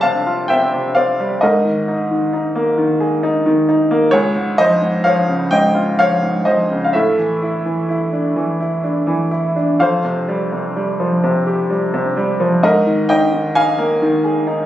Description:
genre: classical, lyrical solo piano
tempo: 43 BPM (dotted quarters)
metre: 6/8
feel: rubato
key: unclear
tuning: A4 = 440 Hz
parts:
  - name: bright upright piano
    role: solo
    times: 0.0-14.7 s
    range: Db2 to A5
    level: -14 LUFS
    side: equal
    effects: none
room: light reverb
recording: recorded on a phone in the room, studio reverb, compression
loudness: -14 LUFS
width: side -12 dB against mid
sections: 0.0-14.7 A section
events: none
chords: 0.0 Fsus2; 1.4 Absus2; 4.1 Dbadd9; 6.9 Asus4; 9.8 Fsus2; 12.6 Absus2

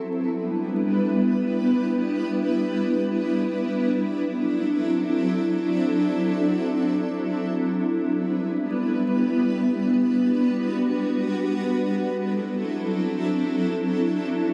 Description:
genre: hip hop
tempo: free time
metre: none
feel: none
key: E minor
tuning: A4 = 442 Hz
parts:
  - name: granular cloud pad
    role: solo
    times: 0.0-14.5 s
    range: F#3 to B4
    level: -24 LUFS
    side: equal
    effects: built-in reverb, tape echo
room: wet studio reverb, RT60 0.5 s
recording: dark, warm production, vinyl crackle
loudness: -24 LUFS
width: mono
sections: 0.0-14.5 A section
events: none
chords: 0.0 Em7; 3.9 D9; 7.9 Em7; 11.9 D9

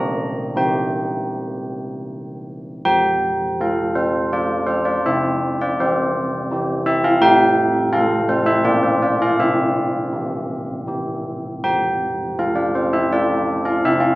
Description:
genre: classical, tune for church bells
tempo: 82 BPM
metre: 3/4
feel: straight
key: F major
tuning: A4 = 440 Hz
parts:
  - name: old church bells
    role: solo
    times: 0.0-14.2 s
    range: F3 to Bb5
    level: -17 LUFS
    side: equal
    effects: none
room: moderate recital hall reverb, RT60 1.6 s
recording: close, detailed microphones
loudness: -17 LUFS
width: side -18 dB against mid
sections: 0.0-2.9 A section; 2.9-14.2 B section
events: none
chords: 0.0 Gm/Bb; 0.6 C; 2.9 F; 5.0 C; 7.2 F/A; 8.6 Gm7/Bb; 9.4 C; 11.6 F

